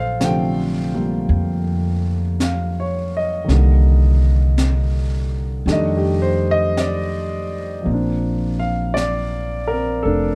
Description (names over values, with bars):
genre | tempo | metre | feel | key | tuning
jazz ballad | 55 BPM | 4/4 | swing 68% on 8ths | Bb major | A4 = 440 Hz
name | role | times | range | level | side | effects
warm concert grand piano | accompaniment | 0.0-10.3 s | C3 to G5 | -23 LUFS | equal | none
upright bass | bass | 0.0-10.3 s | F1 to F2 | -21 LUFS | equal | none
jazz brush drum kit | drums | 0.2-10.3 s | brushed snare drum, hi-hat, snare drum | -30 LUFS | equal | none
room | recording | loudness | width
light reverb | dark, warm production | -19 LUFS | mono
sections
0.0-7.9 A section; 7.9-10.3 B section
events
none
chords
0.0 Bbmaj9; 3.5 Cm7; 5.7 F13; 7.9 Bbadd9